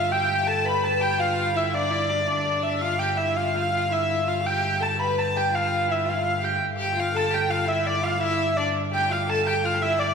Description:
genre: medieval dance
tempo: 111 BPM (dotted quarters)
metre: 6/8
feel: straight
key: G mixolydian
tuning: A4 = 440 Hz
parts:
  - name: rich hurdy-gurdy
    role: melody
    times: 0.0-10.1 s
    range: D5 to B5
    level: -23 LUFS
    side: equal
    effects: none
  - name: clear fiddle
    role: second line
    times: 0.0-10.1 s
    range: D4 to B4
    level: -28 LUFS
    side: left 2 dB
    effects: none
  - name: pipe organ, principal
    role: drone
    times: 0.0-10.1 s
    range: G2 to D3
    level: -30 LUFS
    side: equal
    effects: none
room: wet church reverb, RT60 3.1 s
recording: recorded in a church or concert hall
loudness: -21 LUFS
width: side -6 dB against mid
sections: 0.0-6.6 A section; 6.6-10.1 B section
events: none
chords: none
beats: | 0.11 0.65 | 1.19 1.74 | 2.28 2.82 | 3.36 3.90 | 4.44 4.98 | 5.52 6.06 | 6.59 7.13 | 7.67 8.20 | 8.74 9.27 | 9.81

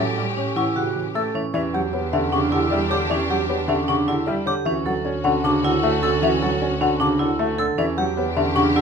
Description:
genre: classical, minimalist pattern music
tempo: 154 BPM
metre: 4/4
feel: straight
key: E dorian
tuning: A4 = 441 Hz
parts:
  - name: buzzing marimba with soft mallets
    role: melody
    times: 0.0-8.8 s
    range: C#5 to A5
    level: -27 LUFS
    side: left 10 dB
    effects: none
  - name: dark French horn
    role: second line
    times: 0.0-8.8 s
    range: F#4 to G4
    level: -29 LUFS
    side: right 4 dB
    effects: none
  - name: warm baby grand piano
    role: accompaniment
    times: 0.0-8.8 s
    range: C#3 to C#4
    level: -25 LUFS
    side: left 1 dB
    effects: none
  - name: clear symphonic string section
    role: sustained chords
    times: 0.0-8.8 s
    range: C#4 to G4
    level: -29 LUFS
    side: left 2 dB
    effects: none
  - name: vibraphone with hard mallets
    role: arpeggios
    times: 0.0-8.8 s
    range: C#4 to A4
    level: -24 LUFS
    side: right 4 dB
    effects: none
  - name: warm double bass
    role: bass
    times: 0.0-8.8 s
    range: D2 to A2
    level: -29 LUFS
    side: right 4 dB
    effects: none
  - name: mellow hollow silver concert flute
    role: arpeggios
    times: 0.6-8.8 s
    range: E5 to E6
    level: -27 LUFS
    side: left 4 dB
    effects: none
room: light reverb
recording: none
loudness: -19 LUFS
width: side -6 dB against mid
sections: 0.0-1.5 A section; 1.5-8.8 B section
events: none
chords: 0.0 A7; 1.5 Em9; 4.7 Dmaj7; 7.8 Em9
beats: 0.38 0.77 1.16 | 1.54 1.93 2.32 2.71 | 3.10 3.49 3.88 4.27 | 4.66 5.05 5.44 5.83 | 6.22 6.61 7.00 7.39 | 7.78 8.17 8.56

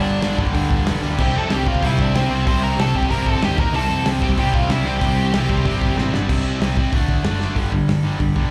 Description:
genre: punk rock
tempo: 188 BPM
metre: 4/4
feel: straight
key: unclear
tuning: A4 = 440 Hz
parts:
  - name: bluesy overdriven lead guitar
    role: melody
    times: 0.0-5.9 s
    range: C4 to C6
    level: -26 LUFS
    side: equal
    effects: distortion, slapback echo
  - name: cranked stack guitar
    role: riff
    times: 0.0-8.5 s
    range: G2 to C4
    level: -30 LUFS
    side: equal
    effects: overdrive, slapback echo
  - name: distorted electric guitar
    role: riff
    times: 0.0-8.5 s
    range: G2 to Eb4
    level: -27 LUFS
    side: equal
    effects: overdrive, slapback echo
  - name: distorted electric guitar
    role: riff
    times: 0.0-8.5 s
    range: G2 to D5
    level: -29 LUFS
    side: equal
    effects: overdrive, slapback echo
  - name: overdriven picked electric bass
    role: bass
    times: 0.0-8.5 s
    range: F1 to F2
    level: -25 LUFS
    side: equal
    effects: none
  - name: loose indie drum kit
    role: drums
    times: 0.2-8.4 s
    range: crash cymbal, hi-hat, kick drum, snare drum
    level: -24 LUFS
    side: equal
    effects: none
room: little or no reverb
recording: live gig heard through the venue's PA, club reverb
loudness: -19 LUFS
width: mono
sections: 0.0-6.3 A section; 6.3-7.6 B section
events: drum fill 6.0-6.3, 7.4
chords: 0.0 Gm; 1.2 C; 3.6 Eb5; 3.7 C; 6.1 G5; 6.3 C; 6.9 D; 7.6 G5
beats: 0.23 0.55 0.87 | 1.19 1.51 1.83 2.15 | 2.47 2.79 3.10 3.42 | 3.74 4.06 4.38 4.70 | 5.02 5.33 5.65 5.97 | 6.29 6.61 6.93 7.25 | 7.56 7.88 8.20

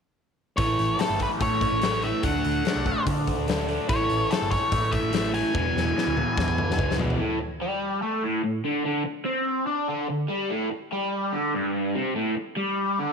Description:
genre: blues rock power trio and southern rock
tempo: 145 BPM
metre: 4/4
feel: straight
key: A mixolydian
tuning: A4 = 440 Hz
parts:
  - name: octave-fuzz lead guitar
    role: melody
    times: 0.6-7.0 s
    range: A4 to G#5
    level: -28 LUFS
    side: left 1 dB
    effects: distortion
  - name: raw garage guitar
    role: riff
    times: 0.6-13.1 s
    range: E2 to D4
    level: -26 LUFS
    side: equal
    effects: overdrive, phaser
  - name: hollow-body short-scale picked electric bass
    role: bass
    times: 0.6-7.2 s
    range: E1 to D3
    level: -29 LUFS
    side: right 2 dB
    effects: none
  - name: big rock drum kit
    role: drums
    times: 0.6-7.2 s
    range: hi-hat, kick drum, snare drum, toms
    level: -28 LUFS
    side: left 3 dB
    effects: none
room: moderate echo chamber reverb, RT60 1.6 s, small room ambience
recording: 1960s-style stereo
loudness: -23 LUFS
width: side -6 dB against mid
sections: 0.6-7.2 A section; 7.2-13.1 B section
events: drum fill 5.5-7.2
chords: 0.6 A; 2.2 D; 3.9 A; 5.5 E; 7.2 A7(no3); 8.9 D7sus4; 10.5 Gsus2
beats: | 0.58 1.00 1.41 1.82 | 2.24 2.65 3.06 3.48 | 3.89 4.31 4.72 5.13 | 5.55 5.96 6.37 6.79 | 7.20 7.61 8.03 8.44 | 8.85 9.27 9.68 10.09 | 10.51 10.92 11.33 11.74 | 12.16 12.57 12.98

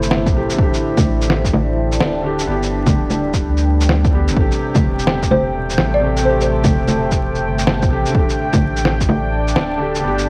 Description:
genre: future garage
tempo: 127 BPM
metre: 4/4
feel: swing 65% on 16ths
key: unclear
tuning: A4 = 440 Hz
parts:
  - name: clear upright piano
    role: accompaniment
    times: 0.0-10.3 s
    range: C3 to G4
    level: -25 LUFS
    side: equal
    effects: sidechain pumping, cassette tape, tape echo
  - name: deep dark ambient pad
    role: sustained chords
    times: 0.0-10.3 s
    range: G3 to A5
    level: -24 LUFS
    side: equal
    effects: chorus, built-in reverb, sidechain pumping, cassette tape
  - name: warm sub bass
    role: bass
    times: 0.0-10.3 s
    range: D1 to D2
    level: -23 LUFS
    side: equal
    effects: sidechain pumping
  - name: electronic shaker, snare drum and bongos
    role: drums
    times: 0.0-10.3 s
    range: none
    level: -21 LUFS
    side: equal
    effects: small room ambience, cassette tape
  - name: electronic kick drum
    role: drums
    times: 0.3-9.1 s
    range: none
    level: -20 LUFS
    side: equal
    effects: overdrive, small room ambience, cassette tape
  - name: folk marimba with soft mallets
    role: melody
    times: 5.3-6.5 s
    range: C5 to D5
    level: -23 LUFS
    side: equal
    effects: cassette tape, analog delay
room: light reverb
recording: home recording on cassette, vinyl crackle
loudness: -17 LUFS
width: mono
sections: 0.0-10.3 A section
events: none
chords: 0.0 Am7; 0.6 Dsus4; 2.5 G; 4.4 Am7; 8.1 Dsus4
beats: 0.11 | 0.58 1.06 1.53 2.00 | 2.47 2.95 3.42 3.89 | 4.36 4.84 5.31 5.78 | 6.25 6.73 7.20 7.67 | 8.14 8.62 9.09 9.56 | 10.03

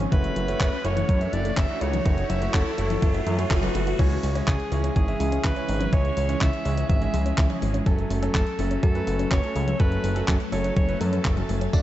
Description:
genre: italo disco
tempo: 124 BPM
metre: 4/4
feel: straight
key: F# minor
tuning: A4 = 439 Hz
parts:
  - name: phased string machine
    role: sustained chords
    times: 0.0-11.8 s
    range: E3 to A4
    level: -33 LUFS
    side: left 1 dB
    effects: ensemble chorus, phaser
  - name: soft round pluck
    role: arpeggios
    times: 0.0-11.8 s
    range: E3 to A4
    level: -33 LUFS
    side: left 2 dB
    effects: chorus, digital delay
  - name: bright concert grand piano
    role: stabs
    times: 0.0-11.8 s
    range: C#3 to E5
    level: -31 LUFS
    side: right 3 dB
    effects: low-pass filter
  - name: fat analog bass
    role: bass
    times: 0.0-11.8 s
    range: F#1 to F#2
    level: -26 LUFS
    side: equal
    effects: none
  - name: clean 12-bit digital drum machine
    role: drums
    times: 0.0-11.8 s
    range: crash cymbal, handclaps, hi-hat, tambourine, toms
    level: -33 LUFS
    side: left 2 dB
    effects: overdrive
  - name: riser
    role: sound effects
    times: 0.1-4.0 s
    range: none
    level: -34 LUFS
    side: left 1 dB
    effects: none
  - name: bright alto saxophone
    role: melody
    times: 0.1-11.5 s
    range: G#4 to E5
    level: -31 LUFS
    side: equal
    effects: tape echo
  - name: electronic kick drum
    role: drums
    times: 0.1-11.8 s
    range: none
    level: -22 LUFS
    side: equal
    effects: overdrive
room: light reverb, digital ambience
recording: dark, warm production, nothing above 8.0 kHz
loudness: -21 LUFS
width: side -13 dB against mid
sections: 0.0-4.0 A section; 4.0-11.8 B section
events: riser 0.1-4.0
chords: 0.1 F#m7; 4.0 C#m; 7.9 F#m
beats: | 0.12 0.60 1.09 1.57 | 2.06 2.54 3.02 3.51 | 3.99 4.48 4.96 5.44 | 5.93 6.41 6.89 7.38 | 7.86 8.35 8.83 9.31 | 9.80 10.28 10.77 11.25 | 11.73

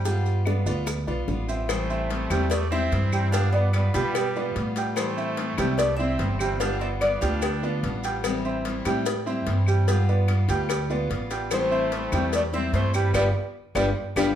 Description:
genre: latin, Cuban son and guajira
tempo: 147 BPM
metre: 4/4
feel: straight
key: A minor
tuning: A4 = 439 Hz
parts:
  - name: picked steel-string acoustic guitar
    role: accompaniment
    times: 0.0-14.3 s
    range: E3 to F4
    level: -30 LUFS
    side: left 4 dB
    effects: none
  - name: bright baby grand piano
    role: arpeggios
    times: 0.0-14.3 s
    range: G3 to G5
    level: -30 LUFS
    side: right 5 dB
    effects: none
  - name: upright bass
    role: bass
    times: 0.0-14.3 s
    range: G1 to B2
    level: -26 LUFS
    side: equal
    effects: none
  - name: bongos and cowbell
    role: percussion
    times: 0.1-14.3 s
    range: none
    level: -33 LUFS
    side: left 7 dB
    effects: none
  - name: maracas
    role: percussion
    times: 0.1-14.3 s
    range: none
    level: -40 LUFS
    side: right 5 dB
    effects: none
  - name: claves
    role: percussion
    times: 0.5-14.3 s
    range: none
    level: -38 LUFS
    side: left 2 dB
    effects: none
  - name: Cuban tres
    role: melody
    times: 1.7-8.0, 11.5-14.3 s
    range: G4 to F5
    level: -28 LUFS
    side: left 1 dB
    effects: none
  - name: bright trumpet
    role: second line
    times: 1.7-8.0, 11.5-14.3 s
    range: G3 to D4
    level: -34 LUFS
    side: right 3 dB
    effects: none
room: moderate large studio reverb, RT60 0.9 s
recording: heard from further back in the room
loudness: -22 LUFS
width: side -10 dB against mid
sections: 0.0-1.7 A section; 1.7-14.4 B section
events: band accent 13.1-14.4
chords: 0.0 G7; 1.7 Am7; 3.3 G7; 5.0 Am7; 6.6 G7; 8.2 Am7; 9.9 G7; 11.5 Am7; 13.1 G7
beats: | 0.05 0.46 0.87 1.28 | 1.69 2.10 2.51 2.92 | 3.33 3.74 4.15 4.56 | 4.97 5.38 5.79 6.19 | 6.60 7.01 7.42 7.83 | 8.24 8.65 9.06 9.47 | 9.88 10.29 10.69 11.10 | 11.51 11.92 12.33 12.74 | 13.15 13.55 13.96

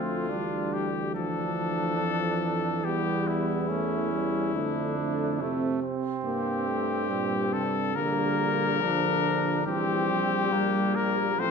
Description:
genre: classical, brass quintet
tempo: 70 BPM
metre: 4/4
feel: straight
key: unclear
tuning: A4 = 440 Hz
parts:
  - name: clear trumpet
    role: melody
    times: 0.0-11.5 s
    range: E4 to C5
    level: -30 LUFS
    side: left 8 dB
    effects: none
  - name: clear trumpet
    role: second line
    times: 0.0-11.5 s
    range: A3 to D4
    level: -33 LUFS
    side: right 8 dB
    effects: none
  - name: dark euphonium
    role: accompaniment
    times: 0.0-11.5 s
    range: Bb2 to G3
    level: -32 LUFS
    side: right 5 dB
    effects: none
  - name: mellow French horn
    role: accompaniment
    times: 0.0-11.5 s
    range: F3 to C4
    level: -32 LUFS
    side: left 5 dB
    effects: none
  - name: bright bass trombone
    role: bass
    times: 0.0-11.5 s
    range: A1 to G2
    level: -34 LUFS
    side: right 4 dB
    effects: none
room: wet recital hall reverb, RT60 1.4 s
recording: none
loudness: -25 LUFS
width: side -5 dB against mid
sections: 0.0-11.5 A section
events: none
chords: 0.0 Dm; 2.8 C#dim/E; 4.5 Dm/F; 6.2 Gm; 8.0 Gm/Bb; 9.7 C7/Bb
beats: 0.30 1.15 2.00 | 2.85 3.70 4.55 5.40 | 6.24 7.10 7.96 8.81 | 9.66 10.53 11.39

